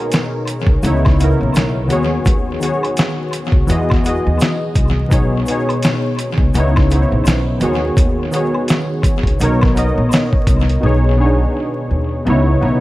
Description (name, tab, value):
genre	lo-fi hip hop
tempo	84 BPM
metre	4/4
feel	swing 60% on 16ths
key	B major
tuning	A4 = 436 Hz
part	warm analog keys	accompaniment	0.0-12.8 s	B2 to D#5	-17 LUFS	left 1 dB	chorus, low-pass filter
part	dusty soul sampler-style drum kit	drums	0.1-10.8 s	hi-hat, kick drum, snare drum	-16 LUFS	equal	overdrive, tape echo
part	tube shaker and woodblock	percussion	0.1-10.7 s	none	-30 LUFS	equal	tape echo
part	upright bass	bass	0.7-12.8 s	A#1 to E2	-17 LUFS	equal	none
room	little or no reverb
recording	echo-heavy mix, vinyl crackle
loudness	-13 LUFS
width	side -17 dB against mid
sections	0.0-10.8 A section; 10.8-12.8 B section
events	none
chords	0.0 B69; 0.8 C#m7; 1.9 B69/D#; 3.7 Emaj9; 5.1 B69; 6.5 C#m7; 7.6 B69/D#; 9.4 Bmaj9; 10.8 B69; 12.3 C#m7